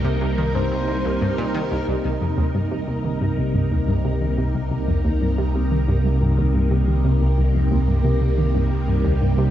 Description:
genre	ambient, sequencer-driven space music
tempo	90 BPM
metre	4/4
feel	straight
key	C minor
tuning	A4 = 441 Hz
part	soft octave-layered synth lead	melody	0.0-1.5 s	Bb4 to C5	-29 LUFS	right 1 dB	chorus, analog delay
part	phased string machine	sustained chords	0.0-9.5 s	C3 to Bb4	-23 LUFS	equal	ensemble chorus, phaser
part	analog pluck	riff	0.0-9.5 s	C2 to Eb3	-23 LUFS	equal	chorus, analog delay
part	warm sub bass	bass	0.0-9.5 s	C2	-22 LUFS	equal	none
part	bubbling stepped-filter texture	texture	0.0-9.5 s	G4 to Bb4	-39 LUFS	equal	chorus, built-in reverb
room	moderate lush hall reverb, RT60 3.2 s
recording	dark, warm production, nothing above 7.8 kHz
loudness	-18 LUFS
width	side -12 dB against mid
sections	0.0-1.9 A section; 1.9-9.5 B section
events	fade-in on synth texture 1.9-9.5; filter sweep on synth arpeggio sound 1.9-9.5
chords	0.0 Cm7

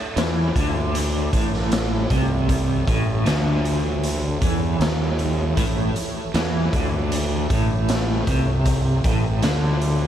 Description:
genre	psychedelic rock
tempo	78 BPM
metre	4/4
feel	straight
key	A major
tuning	A4 = 442 Hz
part	tonewheel organ	sustained chords	0.0-10.1 s	A4 to E5	-33 LUFS	right 6 dB	chorus vibrato, stopped rotary speaker
part	swarming drone	drone	2.4-10.1 s	A1	-35 LUFS	right 1 dB	none
part	electric guitar at the edge of break-up	riff	0.2-10.1 s	A2 to E3	-24 LUFS	equal	tremolo, double-tracked left and right, dub echo
part	fuzz fingered electric bass	bass	0.2-10.1 s	A1 to E2	-23 LUFS	equal	overdrive
part	raw garage drum kit	drums	0.2-10.0 s	hi-hat, kick drum, snare drum	-24 LUFS	equal	dub echo
room	studio ambience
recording	echo-heavy mix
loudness	-19 LUFS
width	side -10 dB against mid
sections	0.0-10.1 A section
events	none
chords	0.0 A

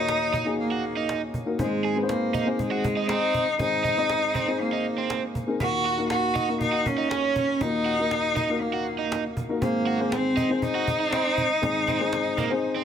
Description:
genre	piano-driven pop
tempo	120 BPM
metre	4/4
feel	straight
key	unclear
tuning	A4 = 440 Hz
part	rich cello	melody	0.0-12.8 s	Ab3 to Gb4	-25 LUFS	equal	none
part	dark upright piano	accompaniment	0.0-12.8 s	Eb2 to Eb5	-28 LUFS	left 3 dB	none
part	cajon	drums	0.1-12.5 s	none	-32 LUFS	right 1 dB	none
part	overdriven electric guitar	riff	0.3-12.8 s	Bb3 to Ab4	-30 LUFS	right 7 dB	none
room	moderate large studio reverb, RT60 1.0 s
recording	none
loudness	-22 LUFS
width	side -8 dB against mid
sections	0.0-12.8 A section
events	break 12.6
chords	0.0 Ebm; 1.6 Ab; 5.6 Ebm; 9.6 Ab

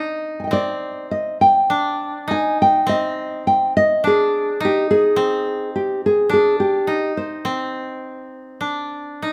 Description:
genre	japanese traditional, Japanese chamber music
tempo	52 BPM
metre	2/4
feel	rubato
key	C hirajoshi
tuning	A4 = 439 Hz
part	koto	second line	0.0-9.3 s	C4 to Eb4	-26 LUFS	equal	none
part	nylon-string guitar	melody	0.4-9.2 s	G4 to Ab5	-19 LUFS	equal	none
room	light reverb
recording	close, detailed microphones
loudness	-19 LUFS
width	mono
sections	0.0-9.3 A section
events	none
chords	none

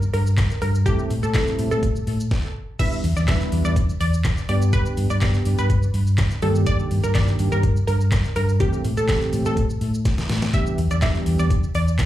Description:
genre	dance-pop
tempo	124 BPM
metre	4/4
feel	straight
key	unclear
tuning	A4 = 439 Hz
part	vintage muted fingered electric bass	bass	0.0-12.1 s	E2 to A2	-21 LUFS	equal	sidechain pumping
part	smooth R&B drum kit	drums	0.0-12.1 s	crash cymbal, handclaps, hi-hat, kick drum, shaker, snare drum	-23 LUFS	equal	none
part	wide unison pluck	melody	0.1-11.9 s	G4 to E5	-28 LUFS	equal	slapback echo, ping-pong delay
part	soft electric-piano-like synth keys	accompaniment	0.9-11.5 s	Eb3 to B4	-26 LUFS	right 2 dB	chorus, sidechain pumping, slapback echo
room	little or no reverb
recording	live gig heard through the venue's PA, club reverb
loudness	-18 LUFS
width	side -14 dB against mid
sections	0.0-2.8 A section; 2.8-12.1 A section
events	drop 0.0-2.8, 2.8-12.1; stop 2.3-2.8; drum fill 10.1-10.5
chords	0.0 Eb/G (rootless); 0.9 Am7; 2.8 Em7; 4.5 G; 6.4 Ebmaj7; 8.6 Am7; 10.5 Em7

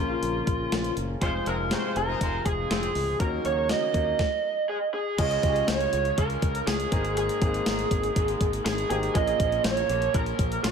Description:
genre	1980s-style pop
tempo	121 BPM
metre	4/4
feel	straight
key	Bb minor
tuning	A4 = 436 Hz
part	lead guitar through a small cranked amp	melody	0.0-10.7 s	F4 to Eb5	-27 LUFS	right 3 dB	overdrive
part	warm concert grand piano	accompaniment	0.0-10.7 s	Ab2 to Bb4	-33 LUFS	left 3 dB	none
part	warm analog pad	sustained chords	0.0-4.2 s	Ab2 to Gb4	-37 LUFS	equal	chorus
part	fingered electric bass	bass	0.0-10.7 s	F1 to Eb2	-32 LUFS	left 1 dB	none
part	clean 12-bit digital drum machine	drums	0.2-10.7 s	crash cymbal, hi-hat, kick drum, snare drum, tambourine	-28 LUFS	left 1 dB	gated reverb
part	warm horn section	stabs	1.2-2.9 s	C3 to Eb5	-36 LUFS	equal	none
part	raw garage guitar	accompaniment	5.2-10.7 s	Ab2 to Db4	-37 LUFS	right 1 dB	overdrive, wide subtle chorus
room	light reverb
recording	none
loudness	-23 LUFS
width	side -6 dB against mid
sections	0.0-5.2 A section; 5.2-10.7 B section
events	stop 4.2-5.2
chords	0.0 Bbm; 1.2 Fm; 3.2 Ebm7; 4.2 N.C.; 5.2 Db; 6.9 Abadd9; 9.2 Bbm7

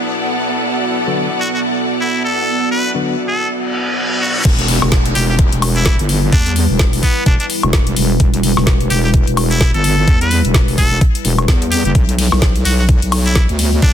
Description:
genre	bass house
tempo	128 BPM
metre	4/4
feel	swing 58% on 16ths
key	E minor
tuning	A4 = 439 Hz
part	deep dark ambient pad	sustained chords	0.0-13.9 s	G3 to D5	-21 LUFS	right 1 dB	chorus, built-in reverb, sidechain pumping
part	clear studio string section	texture	0.0-4.5 s	B3 to F#5	-20 LUFS	left 1 dB	sidechain pumping
part	percussive organ stab	stabs	1.1-3.2 s	D3 to F#4	-24 LUFS	left 4 dB	chorus, sidechain pumping, ping-pong delay
part	trumpet with straight mute	melody	1.4-13.9 s	B3 to B4	-21 LUFS	equal	ping-pong delay
part	reverse cymbal and downlifter	sound effects	3.6-8.2 s	none	-22 LUFS	equal	none
part	wobble bass	bass	4.5-13.9 s	E1 to E2	-16 LUFS	equal	chorus, sidechain pumping
part	electronic kick drum	drums	4.5-13.9 s	none	-13 LUFS	equal	none
part	garage drum kit	drums	4.5-13.9 s	crash cymbal, hi-hat, ride cymbal, snare drum, woodblock	-20 LUFS	left 2 dB	low-pass filter on hats, low-pass filter on cymbals, low-pass filter on perc, low-pass filter on snare
room	light reverb, digital ambience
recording	dense, heavily limited modern master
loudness	-12 LUFS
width	side -10 dB against mid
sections	0.0-4.5 A section; 4.5-13.9 B section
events	reverse cymbal 3.6-4.5; drop 4.5-13.9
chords	0.0 Bm; 4.5 Em; 11.9 Bm

